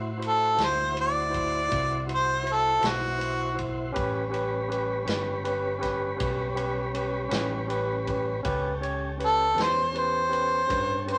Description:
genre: slow blues.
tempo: 54 BPM (dotted quarters).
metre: 12/8.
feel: straight.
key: A mixolydian.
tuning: A4 = 440 Hz.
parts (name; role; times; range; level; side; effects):
barky tine electric piano; accompaniment; 0.0-11.2 s; C#4 to D5; -34 LUFS; equal; none.
tonewheel organ; sustained chords; 0.0-11.2 s; G3 to C5; -37 LUFS; equal; slow rotary speaker.
fingered electric bass; bass; 0.0-11.2 s; G1 to A2; -37 LUFS; equal; none.
swinging big-band drum kit; drums; 0.2-11.2 s; kick drum, ride cymbal, snare drum; -39 LUFS; equal; none.
bright harmonica; melody; 0.3-11.2 s; F#4 to D5; -26 LUFS; equal; overdrive.
room: moderate studio ambience, RT60 0.4 s.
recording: none.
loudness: -27 LUFS.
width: mono.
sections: 0.0-11.2 A section.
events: harmonica solo 0.0-11.2.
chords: 0.0 D9; 4.0 A9.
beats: 0.59 1.71 2.84 | 3.96 5.08 6.20 7.33 | 8.45 9.57 10.69.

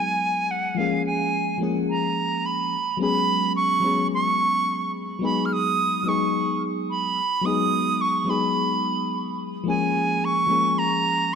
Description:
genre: chillout.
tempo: 108 BPM.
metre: 4/4.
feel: swing 56% on 16ths.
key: B lydian.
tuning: A4 = 439 Hz.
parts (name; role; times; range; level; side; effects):
bright reedy silver concert flute; melody; 0.0-11.3 s; E#5 to E#6; -23 LUFS; right 2 dB; tape echo.
mellow FM electric piano; accompaniment; 0.0-11.4 s; E#3 to G#4; -25 LUFS; moving between left 6 dB and right 2 dB; chorus, auto-pan.
room: moderate lush hall reverb, RT60 2.2 s.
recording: none.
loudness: -21 LUFS.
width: side -6 dB against mid.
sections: 0.0-11.4 A section.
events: none.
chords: 0.0 B6; 0.8 A#m7; 2.7 C#7sus4; 5.2 B6; 9.7 A#m7.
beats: 0.22 | 0.78 1.33 1.89 2.44 | 3.00 3.55 4.11 4.66 | 5.22 5.78 6.33 6.89 | 7.44 8.00 8.55 9.11 | 9.66 10.22 10.78 11.33.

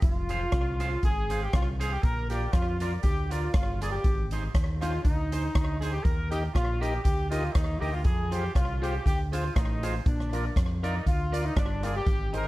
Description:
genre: ska.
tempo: 120 BPM.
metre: 4/4.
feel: swing 54% on 8ths.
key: unclear.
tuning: A4 = 443 Hz.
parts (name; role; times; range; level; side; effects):
clear horn section; melody; 0.0-12.5 s; D4 to Bb4; -33 LUFS; equal; slapback echo.
fingered electric bass; bass; 0.0-12.5 s; F1 to F2; -30 LUFS; equal; none.
swinging big-band drum kit; drums; 0.0-12.4 s; hi-hat, kick drum, rim click; -28 LUFS; equal; none.
twangy electric guitar; accompaniment; 0.3-12.4 s; Eb4 to F5; -38 LUFS; right 4 dB; slapback echo.
mellow tonewheel organ; stabs; 6.3-12.5 s; Eb4 to F5; -37 LUFS; left 2 dB; slow rotary speaker.
room: small room ambience.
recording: dark, warm production.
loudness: -25 LUFS.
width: side -18 dB against mid.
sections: 0.0-12.5 A section.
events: none.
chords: 0.0 Fm; 2.0 Bb; 4.0 Ab; 6.0 Eb; 8.1 Fm; 10.1 Bb.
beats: | 0.03 0.53 1.03 1.53 | 2.04 2.54 3.04 3.54 | 4.04 4.54 5.05 5.55 | 6.05 6.55 7.05 7.55 | 8.05 8.56 9.06 9.56 | 10.06 10.56 11.06 11.56 | 12.07.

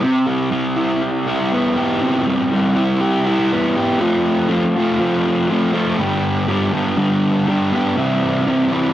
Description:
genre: rock.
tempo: 121 BPM.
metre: 4/4.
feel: straight.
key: unclear.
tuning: A4 = 439 Hz.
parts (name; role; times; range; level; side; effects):
fuzz guitar; solo; 0.0-8.9 s; G2 to G4; -15 LUFS; equal; distortion, cassette tape.
room: light reverb, digital ambience.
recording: home recording on cassette.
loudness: -15 LUFS.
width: side -12 dB against mid.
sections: 0.0-4.0 A section; 4.0-8.9 B section.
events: none.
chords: 0.0 Cmaj7; 4.0 F; 6.0 G; 8.0 C.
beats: | 0.02 0.52 1.01 1.51 | 2.01 2.50 3.00 3.50 | 4.00 4.49 4.99 5.49 | 5.98 6.48 6.98 7.47 | 7.97 8.47.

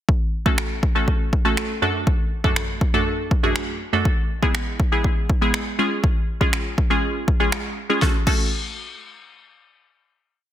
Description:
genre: dance-pop.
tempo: 121 BPM.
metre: 4/4.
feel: straight.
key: F# minor.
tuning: A4 = 437 Hz.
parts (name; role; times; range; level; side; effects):
deep house drum kit; drums; 0.1-8.4 s; crash cymbal, finger snaps, kick drum, snare drum; -20 LUFS; equal; overdrive, soft clipping on snare.
wavetable chord stab; accompaniment; 0.5-8.5 s; F#2 to A4; -23 LUFS; right 1 dB; sidechain pumping.
room: light reverb, digital ambience.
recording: dense, heavily limited modern master.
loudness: -19 LUFS.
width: side -11 dB against mid.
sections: 0.1-8.0 verse; 8.0-10.0 final chord.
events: none.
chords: 0.1 F#m; 1.8 D/F#; 4.1 E; 5.8 C#; 8.0 F#m.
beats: | 0.09 0.58 1.08 1.57 | 2.07 2.57 3.06 3.56 | 4.05 4.55 5.04 5.54 | 6.04 6.53 7.03 7.53 | 8.02.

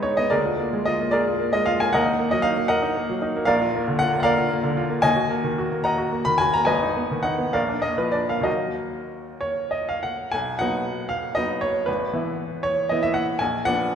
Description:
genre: classical, romantic character piece for solo piano.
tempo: 61-81 BPM (dotted quarters).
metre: 6/8.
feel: rubato.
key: Eb minor.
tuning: A4 = 442 Hz.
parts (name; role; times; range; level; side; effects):
bright upright piano; solo; 0.0-13.9 s; Ab1 to Cb6; -20 LUFS; equal; none.
room: wet concert hall reverb, RT60 1.7 s.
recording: recorded in a church or concert hall.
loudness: -20 LUFS.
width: side -8 dB against mid.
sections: 0.0-10.3 A section; 10.3-13.9 B section.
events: none.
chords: 0.3 Bb7/D; 1.9 Ebm; 3.5 Bb; 5.1 Ebm; 6.7 Abm; 7.5 Bb; 8.5 Ebm; 10.3 B; 11.9 E/G#; 13.4 Bb.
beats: | 0.32 1.13 | 1.92 2.70 | 3.48 4.26 | 5.06 5.87 | 6.69 7.54 | 8.45 9.43 | 10.33 11.11 | 11.88 12.63 | 13.40.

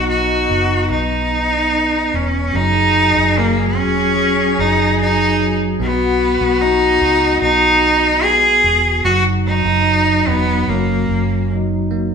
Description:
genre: pop ballad.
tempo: 73 BPM.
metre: 4/4.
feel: straight.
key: B major.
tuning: A4 = 440 Hz.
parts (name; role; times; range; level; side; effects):
bright cello; melody; 0.0-11.5 s; A#3 to G#4; -15 LUFS; right 1 dB; none.
warm French horn section; second line; 0.0-12.1 s; C#4 to G#4; -22 LUFS; left 6 dB; none.
bell-like tine electric piano; accompaniment; 0.0-12.1 s; F#3 to F#4; -23 LUFS; right 3 dB; medium stereo tremolo.
vintage muted fingered electric bass; bass; 0.0-12.1 s; E1 to C#2; -21 LUFS; equal; none.
room: wet large studio reverb, RT60 1.2 s.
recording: band playing live in one room.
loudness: -13 LUFS.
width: side -6 dB against mid.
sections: 0.0-12.1 A section.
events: none.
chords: 0.0 B; 2.6 F#5; 5.8 B; 9.1 Badd11; 10.7 F#6.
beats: 0.09 0.91 1.73 | 2.55 3.37 4.18 5.00 | 5.80 6.61 7.42 8.24 | 9.05 9.87 10.69 11.52.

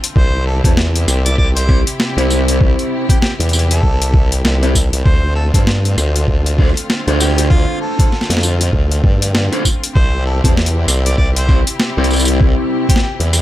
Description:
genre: glitch hop.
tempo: 98 BPM.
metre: 4/4.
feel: swing 59% on 16ths.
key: unclear.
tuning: A4 = 440 Hz.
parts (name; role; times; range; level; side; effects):
muted studio string section; sustained chords; 0.0-13.4 s; C3 to G4; -26 LUFS; left 1 dB; sidechain pumping.
boom bap sampler-style drum kit; drums; 0.0-13.4 s; hi-hat, rim click, snare drum, tambourine; -18 LUFS; equal; overdrive.
mellow harmonica; melody; 0.2-13.1 s; F4 to D5; -26 LUFS; equal; dub echo.
formant-sweep wobble bass; bass; 0.2-13.4 s; C2 to G2; -15 LUFS; equal; chorus, tube saturation.
electronic kick drum; drums; 0.2-13.0 s; none; -13 LUFS; equal; overdrive.
electric guitar at the edge of break-up; stabs; 0.6-13.0 s; C4 to C5; -21 LUFS; left 1 dB; vibrato effect, sidechain pumping, dub echo.
room: little or no reverb.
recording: echo-heavy mix.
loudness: -12 LUFS.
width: side -14 dB against mid.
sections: 0.0-13.4 A section.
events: none.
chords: 0.2 C; 5.1 Dm7; 10.0 C.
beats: | 0.16 0.77 1.39 2.00 | 2.61 3.22 3.83 4.45 | 5.06 5.67 6.28 6.90 | 7.51 8.12 8.73 9.35 | 9.96 10.57 11.18 11.79 | 12.41 13.02.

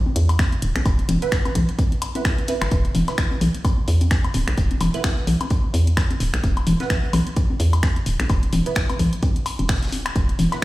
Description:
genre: minimal techno.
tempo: 129 BPM.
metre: 4/4.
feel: swing 57% on 16ths.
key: unclear.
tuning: A4 = 440 Hz.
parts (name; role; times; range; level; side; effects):
electronic toms and woodblock; percussion; 0.1-10.6 s; none; -25 LUFS; left 2 dB; digital delay.
hollow knocking FM bass; bass; 0.2-10.5 s; D1 to E2; -21 LUFS; equal; sidechain pumping.
house drum kit; drums; 0.2-10.6 s; finger snaps, hi-hat; -29 LUFS; equal; none.
warm soul drum kit; drums; 0.2-10.6 s; hi-hat, snare drum; -39 LUFS; left 1 dB; sidechain pumping on hats, high-pass filter on hats, high-pass filter on snare, high-pass filter on room.
electronic kick drum; drums; 0.4-10.6 s; none; -20 LUFS; equal; none.
filtered dub chord stab; stabs; 1.2-10.6 s; B3 to B4; -29 LUFS; right 5 dB; phaser, ensemble chorus, digital delay.
room: little or no reverb.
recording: played on a big sound system in a bare room, stone room reverb.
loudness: -18 LUFS.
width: side -18 dB against mid.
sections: 0.0-10.6 A section.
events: none.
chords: 0.0 E5.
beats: 0.39 | 0.85 1.32 1.78 2.25 | 2.71 3.18 3.65 4.11 | 4.58 5.04 5.51 5.97 | 6.44 6.90 7.37 7.83 | 8.30 8.76 9.23 9.69 | 10.16 10.62.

